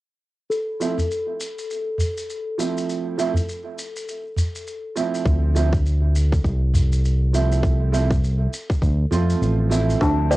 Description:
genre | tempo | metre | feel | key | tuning
organic downtempo | 101 BPM | 4/4 | swing 59% on 16ths | D minor | A4 = 440 Hz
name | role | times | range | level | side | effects
shaker | drums | 0.5-10.4 s | none | -36 LUFS | left 1 dB | cassette tape
quartz singing bowl | texture | 0.5-10.4 s | A4 to A5 | -31 LUFS | left 3 dB | cassette tape
felt-muted upright piano | accompaniment | 0.8-10.4 s | F3 to F4 | -24 LUFS | right 5 dB | sidechain pumping, low-pass filter, cassette tape, analog delay
udu | percussion | 1.0-9.3 s | none | -23 LUFS | equal | none
smooth synth bass | bass | 5.3-10.4 s | A1 to F2 | -18 LUFS | equal | sidechain pumping
electronic kick drum | drums | 5.3-10.2 s | none | -21 LUFS | equal | cassette tape
kalimba | arpeggios | 10.0-10.4 s | D4 to D5 | -20 LUFS | equal | low-pass filter, cassette tape
room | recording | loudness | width
light reverb | home recording on cassette | -19 LUFS | side -18 dB against mid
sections
0.5-10.0 A section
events
filter sweep on felt piano 0.5-10.0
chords
0.5 Dm9

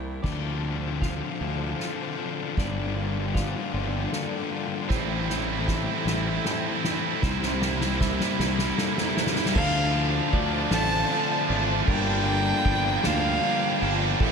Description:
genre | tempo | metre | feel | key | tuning
post-rock | 52 BPM (dotted quarters) | 6/8 | straight | D minor | A4 = 439 Hz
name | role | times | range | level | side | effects
dark chamber string section | sustained chords | 0.0-14.3 s | E3 to A5 | -36 LUFS | equal | none
semi-hollow electric guitar | arpeggios | 0.0-14.3 s | G2 to F4 | -35 LUFS | left 1 dB | none
fuzz fingered electric bass | bass | 0.0-14.3 s | G1 to D2 | -30 LUFS | equal | overdrive
clean electric guitar | arpeggios | 0.2-14.3 s | A4 to F5 | -38 LUFS | right 2 dB | lush chorus, tape echo
sludgy distorted guitar | riff | 0.2-14.3 s | G2 to E4 | -30 LUFS | left 9 dB | overdrive
soft-mallet drum kit | drums | 0.2-14.3 s | crash cymbal, kick drum, ride cymbal, snare drum | -29 LUFS | right 1 dB | none
tight distorted guitar | riff | 4.9-14.3 s | G2 to E4 | -29 LUFS | right 10 dB | distortion
warm violin | melody | 9.5-14.3 s | E5 to A5 | -29 LUFS | equal | tape echo
room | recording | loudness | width
moderate huge ambient reverb, RT60 7.2 s | dreamy mix soaked in reverb | -23 LUFS | side -6 dB against mid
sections
0.2-9.6 A section; 9.6-14.3 B section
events
build-up 0.2-9.6; drum fill 0.2-9.6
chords
0.2 Dm7; 2.6 Gm7; 4.9 Am7; 7.2 C7; 9.6 Dm7; 11.9 Gm7

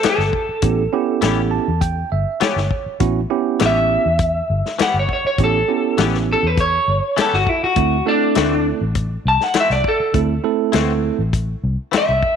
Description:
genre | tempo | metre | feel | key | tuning
straight-eighth soul blues | 101 BPM | 4/4 | straight | A mixolydian | A4 = 440 Hz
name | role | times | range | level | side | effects
electric guitar through a small old amp | melody | 0.0-12.4 s | D4 to A5 | -18 LUFS | equal | spring reverb
direct-recorded clean electric guitar | stabs | 0.0-12.1 s | E3 to G4 | -25 LUFS | left 10 dB | analog chorus, slapback echo
warm soul drum kit | drums | 0.0-12.4 s | hi-hat, kick drum, snare drum | -22 LUFS | left 4 dB | none
vintage muted fingered electric bass | bass | 0.1-12.2 s | G1 to E2 | -21 LUFS | left 1 dB | none
tine electric piano | accompaniment | 0.6-11.2 s | A3 to A5 | -20 LUFS | right 12 dB | none
room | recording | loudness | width
light reverb, small room ambience | 1960s-style stereo with parts hard left and right | -16 LUFS | side -7 dB against mid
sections
0.0-12.4 A section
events
tine electric piano fill 1.2-3.0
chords
0.0 A9; 7.8 D9

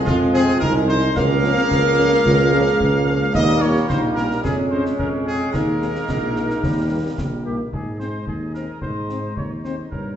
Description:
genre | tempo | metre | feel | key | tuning
military-style march for wind band | 110 BPM | 2/4 | straight | Ab major | A4 = 445 Hz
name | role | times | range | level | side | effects
mellow trumpet section | melody | 0.0-10.2 s | F4 to F5 | -25 LUFS | equal | none
mellow euphonium | second line | 0.0-7.4 s | Bb3 to Ab4 | -26 LUFS | right 3 dB | none
clear trombone section | sustained chords | 0.0-7.5 s | F3 to Db4 | -26 LUFS | right 3 dB | none
clear woodwind section | second line | 0.1-10.2 s | Ab3 to Eb5 | -26 LUFS | left 4 dB | none
mellow tuba | bass | 0.1-10.2 s | Bb1 to Ab2 | -21 LUFS | right 1 dB | none
concert snare drum, concert bass drum and clash cymbals | drums | 0.1-10.1 s | none | -27 LUFS | left 1 dB | none
dark French horn section | accompaniment | 0.3-9.7 s | Eb3 to Db4 | -29 LUFS | left 4 dB | none
room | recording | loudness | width
wet recital hall reverb, RT60 1.3 s | recorded in a church or concert hall, nothing above 7.9 kHz | -17 LUFS | side -9 dB against mid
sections
0.0-7.7 A section; 7.7-10.2 B section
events
none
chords
0.0 Fm; 1.2 Bbm/Db; 3.3 Eb; 4.4 Db/F; 5.5 Ebsus4; 6.6 Eb; 7.7 Ab

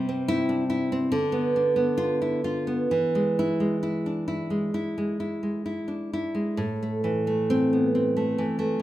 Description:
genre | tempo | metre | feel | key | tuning
romantic piece for solo classical guitar | 64-71 BPM | 4/4 | rubato | A minor | A4 = 438 Hz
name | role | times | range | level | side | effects
nylon-string guitar | solo | 0.0-8.8 s | A2 to F4 | -23 LUFS | equal | none
room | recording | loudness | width
moderate recital hall reverb, RT60 1.3 s | minimal, uncompressed stereo recording | -23 LUFS | side -14 dB against mid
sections
0.0-8.8 A section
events
none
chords
0.0 C; 1.2 Bdim/D; 2.9 E; 6.6 Am

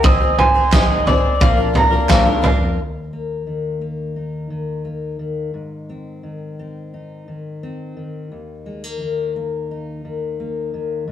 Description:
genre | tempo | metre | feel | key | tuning
indie folk with a building arrangement | 87 BPM | 4/4 | straight | unclear | A4 = 435 Hz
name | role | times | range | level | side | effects
electric guitar through a small old amp | melody | 0.0-2.4 s | C5 to Eb5 | -21 LUFS | equal | tremolo
picked twelve-string acoustic guitar | accompaniment | 0.0-2.8 s | Ab2 to C5 | -20 LUFS | left 4 dB | none
bowl-back mandolin | arpeggios | 0.0-2.8 s | F5 to Fb6 | -21 LUFS | right 4 dB | none
fingered electric bass | bass | 0.0-2.8 s | Ab1 to Ab2 | -26 LUFS | equal | none
loose indie drum kit | drums | 0.0-2.6 s | kick drum, snare drum, toms | -15 LUFS | right 1 dB | none
group handclap | percussion | 0.7-2.3 s | none | -30 LUFS | right 7 dB | none
fingerpicked steel-string acoustic guitar | accompaniment | 2.8-11.1 s | Eb2 to Eb4 | -26 LUFS | left 4 dB | none
room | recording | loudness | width
moderate stone room reverb, RT60 1.0 s | rough rehearsal-room recording, warm saturation | -16 LUFS | side -10 dB against mid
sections
0.0-2.8 A section; 2.8-11.1 B section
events
none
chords
0.0 Ab; 1.4 Bb; 2.8 Eb5; 5.5 Ab; 8.3 Eb5

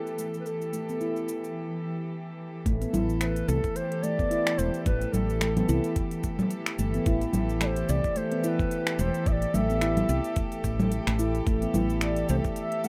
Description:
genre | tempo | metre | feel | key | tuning
organic downtempo | 109 BPM | 4/4 | swing 57% on 16ths | A minor | A4 = 443 Hz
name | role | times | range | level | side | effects
breathy ney | melody | 0.0-12.9 s | A4 to F#5 | -34 LUFS | equal | digital delay
rich chamber string section | sustained chords | 0.0-12.9 s | E3 to A4 | -36 LUFS | equal | vintage 12-bit sampler grit, sidechain pumping
organic electronic drum kit | drums | 0.1-12.9 s | congas, finger snaps, hi-hat, shaker | -33 LUFS | equal | overdrive
handpan | arpeggios | 0.2-12.9 s | A3 to E4 | -34 LUFS | equal | digital delay
woody fretless electric bass | bass | 2.7-12.4 s | E1 to C2 | -31 LUFS | equal | sidechain pumping
electronic kick drum | drums | 2.7-12.5 s | none | -32 LUFS | equal | none
room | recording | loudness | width
moderate small room reverb, RT60 0.5 s | rough home demo mix | -27 LUFS | mono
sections
0.0-2.7 A section; 2.7-12.9 B section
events
break 1.6-2.7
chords
0.0 A5; 2.7 A7(no3)

